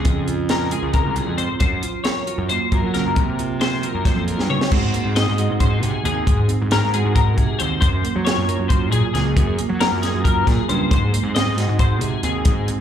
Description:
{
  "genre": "math rock and midwest emo",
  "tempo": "271 BPM (eighths)",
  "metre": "7/8",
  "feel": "straight",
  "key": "Gb lydian",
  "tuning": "A4 = 439 Hz",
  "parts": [
    { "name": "mellow electric guitar", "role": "accompaniment", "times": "0.0-12.8 s", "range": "Gb2 to Bb4", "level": "-25 LUFS", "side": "right 9 dB", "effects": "slapback echo" },
    { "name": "twelve-string electric guitar", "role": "arpeggios", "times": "0.0-12.7 s", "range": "Ab4 to Eb5", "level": "-24 LUFS", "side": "left 6 dB", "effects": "analog chorus, digital delay, slapback echo" },
    { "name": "fuzz picked electric bass", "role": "bass", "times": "0.0-12.7 s", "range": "C2 to Gb3", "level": "-22 LUFS", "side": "left 1 dB", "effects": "overdrive" },
    { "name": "compact cocktail drum kit", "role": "drums", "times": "0.0-12.8 s", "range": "crash cymbal, hi-hat, kick drum, snare drum, toms", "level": "-20 LUFS", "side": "equal", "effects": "none" }
  ],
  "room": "light reverb",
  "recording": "live gig heard through the venue's PA, club reverb",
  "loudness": "-17 LUFS",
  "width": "side -9 dB against mid",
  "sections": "0.0-4.7 A section; 4.7-12.8 B section",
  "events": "drum fill 4.4-4.7",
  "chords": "0.0 Dbmaj7; 1.6 Gbmaj7; 4.7 Ab7; 7.8 Gbmaj9; 10.9 Ab7",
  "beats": "| 0.06 0.28 0.50 0.72 0.94 1.17 1.39 | 1.61 1.83 2.05 2.28 2.50 2.72 2.94 | 3.16 3.39 3.61 3.83 4.05 4.27 4.50 | 4.72 4.94 5.16 5.38 5.60 5.82 6.04 | 6.27 6.49 6.71 6.93 7.15 7.37 7.59 | 7.81 8.04 8.26 8.48 8.70 8.92 9.14 | 9.36 9.58 9.80 10.03 10.25 10.47 10.69 | 10.91 11.13 11.35 11.57 11.80 12.02 12.24 | 12.46 12.68"
}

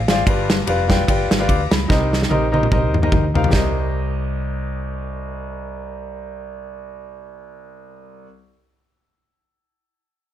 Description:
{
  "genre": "uptempo gospel",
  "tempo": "147 BPM",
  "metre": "4/4",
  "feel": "swing 56% on 8ths",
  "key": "C minor",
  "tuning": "A4 = 439 Hz",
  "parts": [
    { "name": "hollow-body short-scale fingered electric bass", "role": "bass", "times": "0.0-8.2 s", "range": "F1 to Eb2", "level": "-23 LUFS", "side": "equal", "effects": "none" },
    { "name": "clear concert grand piano", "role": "accompaniment", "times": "0.1-8.3 s", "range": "C2 to D6", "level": "-23 LUFS", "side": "left 2 dB", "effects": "none" },
    { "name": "natural country drum kit", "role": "drums", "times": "0.1-3.6 s", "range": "kick drum, ride cymbal, snare drum, toms", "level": "-18 LUFS", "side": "equal", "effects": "none" }
  ],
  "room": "light reverb",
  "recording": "none",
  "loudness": "-16 LUFS",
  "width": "side -11 dB against mid",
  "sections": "0.0-3.5 A section; 3.5-6.8 B section",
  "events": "drum fill 1.9-3.5",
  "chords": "0.3 G7; 1.9 Cm7",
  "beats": "| 0.27 0.68 1.08 1.49 | 1.90 2.31 2.71 3.12 | 3.53 3.94 4.34 4.75 | 5.16 5.56 5.97 6.38"
}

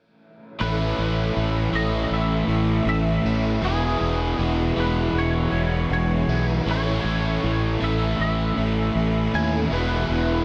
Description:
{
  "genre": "rock",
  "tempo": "79 BPM",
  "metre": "4/4",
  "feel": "straight",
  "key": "unclear",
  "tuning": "A4 = 440 Hz",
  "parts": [
    { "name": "twangy electric guitar", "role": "melody", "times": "0.6-10.4 s", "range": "G#4 to G#5", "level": "-32 LUFS", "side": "equal", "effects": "ensemble chorus, analog delay" },
    { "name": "biting overdriven guitar", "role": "riff", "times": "0.6-10.4 s", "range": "A2 to E4", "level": "-30 LUFS", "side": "equal", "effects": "reverse reverb" },
    { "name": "cranked stack guitar", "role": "riff", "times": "0.6-10.4 s", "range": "E2 to A3", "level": "-30 LUFS", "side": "equal", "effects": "overdrive" },
    { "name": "overdriven semi-hollow guitar", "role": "riff", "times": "0.6-10.4 s", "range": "E2 to E4", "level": "-31 LUFS", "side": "equal", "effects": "analog chorus" },
    { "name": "fuzz fingered electric bass", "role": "bass", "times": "0.6-10.4 s", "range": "E1 to D#2", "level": "-26 LUFS", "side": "equal", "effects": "overdrive" }
  ],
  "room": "light reverb",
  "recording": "dark, warm production",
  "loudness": "-23 LUFS",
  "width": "mono",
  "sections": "0.6-10.4 A section",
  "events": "none",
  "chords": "0.6 Aadd9; 3.6 E; 6.7 A; 9.7 E",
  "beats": "| 0.60 1.36 2.12 2.88 | 3.64 4.40 5.16 5.92 | 6.68 7.44 8.20 8.96 | 9.72"
}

